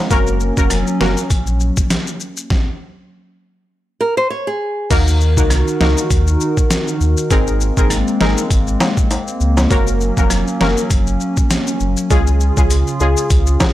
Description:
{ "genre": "dancehall", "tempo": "100 BPM", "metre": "4/4", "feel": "swing 56% on 16ths", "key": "Eb dorian", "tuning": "A4 = 438 Hz", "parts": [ { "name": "hollow soft pad", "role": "sustained chords", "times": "0.0-13.7 s", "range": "Db3 to Bb4", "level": "-21 LUFS", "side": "equal", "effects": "chorus, sidechain pumping" }, { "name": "synth brass stab", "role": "accompaniment", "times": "0.1-1.2, 4.9-13.2 s", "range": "Ab3 to Bb4", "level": "-20 LUFS", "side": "left 1 dB", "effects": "chorus" }, { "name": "sub bass with octave", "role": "bass", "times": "0.1-13.6 s", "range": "F1 to Eb2", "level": "-16 LUFS", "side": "equal", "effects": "none" }, { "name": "boom bap sampler-style drum kit", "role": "drums", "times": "0.1-13.7 s", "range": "crash cymbal, hi-hat, kick drum, rim click, snare drum", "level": "-16 LUFS", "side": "equal", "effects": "overdrive" }, { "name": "maracas and timbales", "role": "percussion", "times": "0.1-13.7 s", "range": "none", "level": "-24 LUFS", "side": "left 2 dB", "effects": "none" }, { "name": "nylon-string guitar", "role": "arpeggios", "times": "4.0-4.9 s", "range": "Ab4 to Db5", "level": "-17 LUFS", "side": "right 1 dB", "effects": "none" } ], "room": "digital ambience", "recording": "dry, gritty hardware recording", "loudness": "-13 LUFS", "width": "side -14 dB against mid", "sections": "0.0-4.9 A section; 4.9-13.7 B section", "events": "stop 2.5-4.9", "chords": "0.1 Gb; 2.5 N.C.; 4.9 Ebm; 7.3 Abadd9; 9.7 Gb; 12.1 Db" }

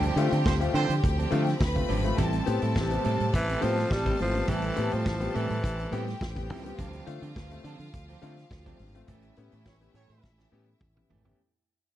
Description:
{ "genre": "disco", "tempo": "104 BPM", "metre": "4/4", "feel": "straight", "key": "unclear", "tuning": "A4 = 440 Hz", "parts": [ { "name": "clear studio string section", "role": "second line", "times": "0.0-11.3 s", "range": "E4 to B5", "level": "-36 LUFS", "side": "equal", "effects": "none" }, { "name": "clear concert grand piano", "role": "accompaniment", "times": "0.0-11.4 s", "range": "G2 to G4", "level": "-33 LUFS", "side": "left 6 dB", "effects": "none" }, { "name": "electric guitar at the edge of break-up", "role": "accompaniment", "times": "0.0-11.4 s", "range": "E3 to A4", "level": "-37 LUFS", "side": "right 9 dB", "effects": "spring reverb" }, { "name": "rich studio string section", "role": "sustained chords", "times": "0.0-11.4 s", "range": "F3 to C#4", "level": "-38 LUFS", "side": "left 1 dB", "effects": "none" }, { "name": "fingered electric bass", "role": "bass", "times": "0.0-11.3 s", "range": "G#1 to D3", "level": "-30 LUFS", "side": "equal", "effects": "none" }, { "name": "vintage drum kit", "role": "drums", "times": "0.0-11.4 s", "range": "hi-hat, kick drum, snare drum, toms", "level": "-31 LUFS", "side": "equal", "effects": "none" }, { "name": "warm horn section", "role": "stabs", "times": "0.5-0.9, 9.7-10.3 s", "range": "G3 to C#5", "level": "-31 LUFS", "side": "right 6 dB", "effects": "none" }, { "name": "growling tenor saxophone", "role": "melody", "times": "2.8-6.2 s", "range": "C3 to G3", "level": "-31 LUFS", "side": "equal", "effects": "none" } ], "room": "little or no reverb", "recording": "dry, close 1970s-style studio recording", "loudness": "-25 LUFS", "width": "side -12 dB against mid", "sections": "0.0-11.4 A section", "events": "fade-out 0.0-11.4; band accent 0.0-2.2, 9.1-11.4; drum fill 10.2-11.4", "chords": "0.0 G7sus4; 2.2 Am7; 6.8 G7sus4/D; 9.1 A7" }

